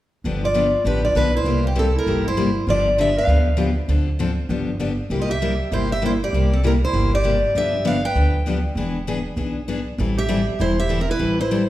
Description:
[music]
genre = acoustic string swing (jazz manouche)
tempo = 197 BPM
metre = 4/4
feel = swing 60% on 8ths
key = G mixolydian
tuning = A4 = 440 Hz
[part]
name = picked steel-string acoustic guitar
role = accompaniment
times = 0.2-11.6 s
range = C3 to A4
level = -23 LUFS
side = left 3 dB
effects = none
[part]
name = upright bass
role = bass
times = 0.2-11.7 s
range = E1 to D2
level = -22 LUFS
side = right 1 dB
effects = none
[part]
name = picked steel-string acoustic guitar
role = melody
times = 0.4-11.7 s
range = G4 to G5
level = -22 LUFS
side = equal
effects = none
[part]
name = breathy clarinet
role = second line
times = 0.4-11.7 s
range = Bb3 to B4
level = -28 LUFS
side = right 4 dB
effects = none
[sound]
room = wet recital hall reverb, RT60 1.4 s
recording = heard from further back in the room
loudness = -18 LUFS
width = side -14 dB against mid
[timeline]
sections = 0.2-11.7 A section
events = none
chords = 0.2 G7; 1.5 C7; 2.7 G7; 3.9 Dm7; 4.5 G7; 5.1 C7; 7.5 G7; 8.8 E7; 10.0 Am7

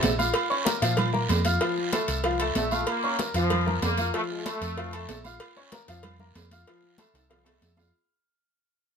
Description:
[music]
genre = latin, salsa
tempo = 190 BPM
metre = 4/4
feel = straight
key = Bb harmonic minor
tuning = A4 = 440 Hz
[part]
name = bright trombone section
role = melody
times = 0.0-0.2, 2.6-5.2 s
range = C3 to Bb3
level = -30 LUFS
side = left 1 dB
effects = none
[part]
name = clear upright piano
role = accompaniment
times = 0.0-7.9 s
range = F3 to F6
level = -29 LUFS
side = left 2 dB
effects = none
[part]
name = hollow-body short-scale fingered electric bass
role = bass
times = 0.0-7.9 s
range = Bb1 to Bb2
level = -29 LUFS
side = equal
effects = none
[part]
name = congas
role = percussion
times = 0.0-7.9 s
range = none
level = -32 LUFS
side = equal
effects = none
[part]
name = cowbell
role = percussion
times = 0.0-7.8 s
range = none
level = -33 LUFS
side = left 1 dB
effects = none
[part]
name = guiro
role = percussion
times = 0.0-7.9 s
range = none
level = -36 LUFS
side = right 6 dB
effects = none
[part]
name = timbales and agogo bells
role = percussion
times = 0.0-7.9 s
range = none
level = -32 LUFS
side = right 7 dB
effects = none
[sound]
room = moderate studio reverb, RT60 0.7 s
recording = minimal, uncompressed stereo recording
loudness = -24 LUFS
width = side -6 dB against mid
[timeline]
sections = 0.0-7.9 A section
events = fade-out 0.0-7.9; drum fill 7.1-7.9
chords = 0.3 Bbm; 1.6 F; 2.9 Bbm; 4.1 F; 5.4 Bbm; 6.7 F

